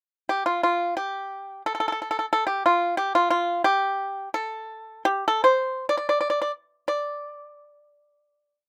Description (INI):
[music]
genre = chinese traditional, Chinese solo plucked strings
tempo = 56-91 BPM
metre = 2/4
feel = rubato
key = D yu mode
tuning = A4 = 439 Hz
[part]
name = pipa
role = solo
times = 0.3-8.7 s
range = F4 to D5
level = -25 LUFS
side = equal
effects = none
[sound]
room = little or no reverb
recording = rough home demo mix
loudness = -25 LUFS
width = mono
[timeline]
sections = 0.0-0.9 pickup bar; 0.9-6.9 A section; 6.9-8.7 final note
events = slowing down 3.7-6.9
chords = none